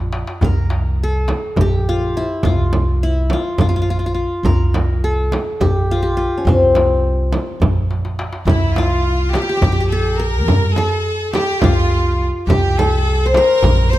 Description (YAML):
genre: Turkish makam ensemble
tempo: 209 BPM (eighths)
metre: 7/8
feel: straight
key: C makam hicaz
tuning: A4 = 441 Hz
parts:
  - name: qanun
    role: melody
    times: 0.0-14.0 s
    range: C4 to C5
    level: -19 LUFS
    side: left 2 dB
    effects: none
  - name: upright bass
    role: bass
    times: 0.0-14.0 s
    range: Bb1 to G2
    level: -19 LUFS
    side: equal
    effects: none
  - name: darbuka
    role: percussion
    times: 0.1-14.0 s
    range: none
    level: -20 LUFS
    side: equal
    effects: none
  - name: frame drum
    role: percussion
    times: 0.4-13.8 s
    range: none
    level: -21 LUFS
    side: right 2 dB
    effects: none
  - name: rich chamber violin section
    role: second line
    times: 8.5-14.0 s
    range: E4 to C5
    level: -22 LUFS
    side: right 1 dB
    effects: none
room: moderate scoring stage reverb, RT60 1.6 s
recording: close, detailed microphones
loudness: -14 LUFS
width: side -15 dB against mid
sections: 0.0-8.5 A section; 8.5-14.0 B section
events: drum fill 0.0-0.4, 7.9-8.5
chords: none